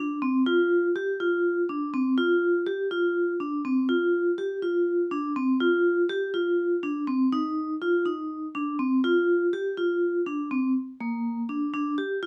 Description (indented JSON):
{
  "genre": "progressive instrumental, progressive",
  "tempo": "245 BPM (eighths)",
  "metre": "7/8",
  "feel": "straight",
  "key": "unclear",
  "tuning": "A4 = 440 Hz",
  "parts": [
    { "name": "vibraphone with medium mallets", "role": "solo", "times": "0.0-12.3 s", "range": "Bb3 to G4", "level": "-26 LUFS", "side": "equal", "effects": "none" }
  ],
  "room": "light reverb",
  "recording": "none",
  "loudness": "-26 LUFS",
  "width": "mono",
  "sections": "0.0-10.8 A section; 10.8-12.3 B section",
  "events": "none",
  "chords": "none"
}